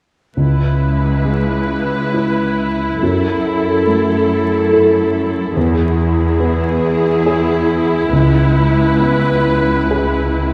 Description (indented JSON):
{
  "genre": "cinematic",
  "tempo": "70 BPM",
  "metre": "3/4",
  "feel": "uneven beats, rubato",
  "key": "C# minor",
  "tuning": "A4 = 440 Hz",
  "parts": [
    { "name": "rich studio viola section", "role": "accompaniment", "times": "0.4-10.5 s", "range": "E4 to B4", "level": "-19 LUFS", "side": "equal", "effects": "none" },
    { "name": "warm baby grand piano", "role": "accompaniment", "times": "0.4-10.5 s", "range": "C#2 to B4", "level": "-19 LUFS", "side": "equal", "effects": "none" },
    { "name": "rich studio cello section", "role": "bass", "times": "0.4-10.5 s", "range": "C#2 to F#2", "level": "-22 LUFS", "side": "equal", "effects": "none" }
  ],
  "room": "wet scoring stage reverb, RT60 1.9 s",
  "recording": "heard from further back in the room, vinyl crackle",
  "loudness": "-15 LUFS",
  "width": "mono",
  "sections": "0.4-10.5 A section",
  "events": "none",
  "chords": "0.4 C#m7; 3.0 F#m7; 5.6 E; 8.1 C#m7",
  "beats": "| 0.37 1.26 2.13 | 3.02 3.87 4.72 | 5.56 6.40 7.25 | 8.11 9.00 9.91"
}